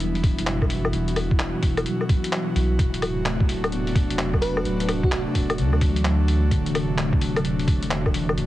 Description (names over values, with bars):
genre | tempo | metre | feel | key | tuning
future garage | 129 BPM | 4/4 | swing 64% on 16ths | unclear | A4 = 440 Hz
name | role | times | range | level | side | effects
mellow tine electric piano | accompaniment | 0.0-8.5 s | C3 to D4 | -29 LUFS | left 1 dB | medium stereo tremolo, sidechain pumping, tape echo
airy breathy pad | sustained chords | 0.0-8.5 s | B2 to F#4 | -27 LUFS | equal | chorus, sidechain pumping
warm sub bass | bass | 0.0-8.5 s | D1 to D2 | -26 LUFS | equal | sidechain pumping
lo-fi sampler-style drum kit | drums | 0.0-8.5 s | handclaps, hi-hat, woodblock | -28 LUFS | left 1 dB | none
electronic kick drum | drums | 0.2-8.1 s | none | -21 LUFS | equal | none
bell-like FM electric piano | melody | 4.4-5.2 s | F#4 to B4 | -30 LUFS | right 2 dB | chorus, tremolo, analog delay
room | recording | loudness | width
digital ambience | heavily compressed radio sound, cassette tape | -20 LUFS | side -15 dB against mid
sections
0.0-8.5 A section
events
none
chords
0.0 Em; 2.8 D7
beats
0.00 0.47 | 0.93 1.40 1.86 2.33 | 2.79 3.26 3.72 4.19 | 4.65 5.12 5.58 6.05 | 6.51 6.98 7.44 7.91 | 8.37